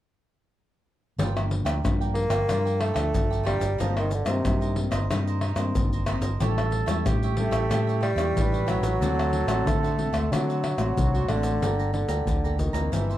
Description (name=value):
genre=samba and choro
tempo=92 BPM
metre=4/4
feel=straight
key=G minor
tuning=A4 = 439 Hz
part: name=cavaquinho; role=accompaniment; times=1.2-13.2 s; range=D4 to Bb5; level=-36 LUFS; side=right 8 dB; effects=none
part: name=nylon-string guitar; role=accompaniment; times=1.2-13.2 s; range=G2 to A4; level=-32 LUFS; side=left 5 dB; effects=none
part: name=fingered electric bass with an envelope filter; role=bass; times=1.2-13.2 s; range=G1 to D3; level=-27 LUFS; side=equal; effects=none
part: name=egg shaker, surdo, pandeiro and tamborim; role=percussion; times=1.2-13.2 s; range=none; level=-28 LUFS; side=left 1 dB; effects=none
part: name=clear bassoon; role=melody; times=2.1-13.2 s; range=C3 to Bb3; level=-28 LUFS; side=equal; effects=plate reverb, tape echo
part: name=mellow wooden flute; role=second line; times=6.4-11.6 s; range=F#4 to D5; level=-33 LUFS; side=right 6 dB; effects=none
room=moderate studio reverb, RT60 0.5 s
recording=dark, warm production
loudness=-22 LUFS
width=side -13 dB against mid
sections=1.2-11.6 A section; 11.6-13.2 B section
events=none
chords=1.2 Gm7; 3.8 Cm7/G; 6.4 A7; 9.0 D7; 11.6 Gmadd9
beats=| 1.19 1.84 2.50 3.15 | 3.80 4.45 5.10 5.75 | 6.41 7.06 7.71 8.36 | 9.01 9.66 10.32 10.97 | 11.62 12.28 12.93